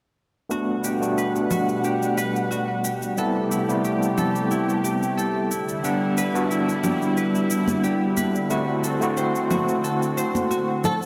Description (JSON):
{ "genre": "sunset chillout", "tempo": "90 BPM", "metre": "4/4", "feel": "swing 54% on 16ths", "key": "G major", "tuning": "A4 = 436 Hz", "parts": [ { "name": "overdriven tine electric piano", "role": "accompaniment", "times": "0.5-11.1 s", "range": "G3 to F#5", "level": "-26 LUFS", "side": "equal", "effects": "medium tremolo, low-pass filter, delay" }, { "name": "lush unison pad", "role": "sustained chords", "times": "0.5-11.1 s", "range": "B2 to F#5", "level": "-29 LUFS", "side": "equal", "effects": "chorus, phaser" }, { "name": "concert harp", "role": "arpeggios", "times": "0.5-11.1 s", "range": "E4 to C5", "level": "-31 LUFS", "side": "equal", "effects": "low-pass filter, delay" }, { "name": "shaker and congas", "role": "drums", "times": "0.5-11.1 s", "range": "none", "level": "-33 LUFS", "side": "equal", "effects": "none" }, { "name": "congas", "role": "percussion", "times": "6.8-10.5 s", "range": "none", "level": "-32 LUFS", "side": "equal", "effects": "none" }, { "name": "flamenco guitar", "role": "melody", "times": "10.8-10.9 s", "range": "A4", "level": "-25 LUFS", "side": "equal", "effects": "analog chorus" } ], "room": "wet lush hall reverb, RT60 3.1 s", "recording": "bright 1980s-style digital production", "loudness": "-23 LUFS", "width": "mono", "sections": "0.5-11.1 A section", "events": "filter sweep on tine electric piano 0.5-11.1", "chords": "0.5 Gmaj7; 3.2 Am7; 5.5 Em7; 8.5 D7" }